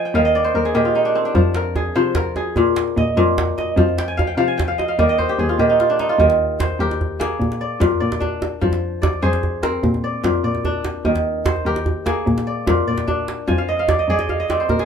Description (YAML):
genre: west african traditional, West African string and xylophone music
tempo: 99 BPM (dotted quarters)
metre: 12/8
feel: straight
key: F dorian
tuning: A4 = 440 Hz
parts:
  - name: kora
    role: arpeggios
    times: 0.0-14.8 s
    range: Bb2 to Ab5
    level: -18 LUFS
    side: equal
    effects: none
  - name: muted cello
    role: bass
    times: 0.1-14.8 s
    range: Eb2 to C3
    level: -22 LUFS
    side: equal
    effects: none
  - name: djembe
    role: percussion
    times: 1.3-14.8 s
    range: none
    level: -23 LUFS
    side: right 2 dB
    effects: none
room: moderate studio ambience, RT60 0.5 s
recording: minimal, uncompressed stereo recording, lossy compression artefacts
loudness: -16 LUFS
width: side -7 dB against mid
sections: 0.0-6.2 A section; 6.2-14.8 B section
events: kora fill 0.0-1.4, 4.0-6.2, 13.5-14.8; drum fill 5.2-6.2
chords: 0.1 Eb5; 1.4 Fm; 2.6 Bb5; 3.8 F5; 5.0 Eb5; 6.2 Eb; 7.4 Bb; 8.6 Fm; 11.0 Eb; 12.3 Bb; 13.5 Fm